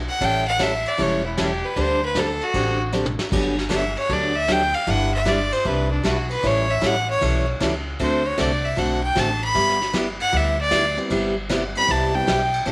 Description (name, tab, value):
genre	country, western swing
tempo	154 BPM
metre	4/4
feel	swing 67% on 8ths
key	G major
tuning	A4 = 440 Hz
part	upright bass	bass	0.0-12.7 s	E1 to D2	-29 LUFS	equal	none
part	clear fiddle	melody	0.1-12.5 s	D4 to B5	-24 LUFS	equal	slapback echo
part	picked steel-string acoustic guitar	accompaniment	0.2-12.7 s	C3 to B4	-27 LUFS	equal	none
part	vintage brush drum kit	drums	0.2-12.7 s	crash cymbal, hi-hat, kick drum, ride cymbal, snare drum, toms	-31 LUFS	equal	none
part	dark upright piano	accompaniment	11.0-12.3 s	G3 to G4	-32 LUFS	equal	none
room	light reverb, small room ambience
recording	none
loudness	-21 LUFS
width	mono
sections	0.0-12.7 A section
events	fiddle solo 0.0-12.7; drum fill 2.9-3.3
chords	0.2 A7; 1.8 D7sus4; 3.3 Gmaj7; 4.9 Em7/G; 6.4 A7; 8.0 D7; 9.6 G6; 11.1 Cmaj7/G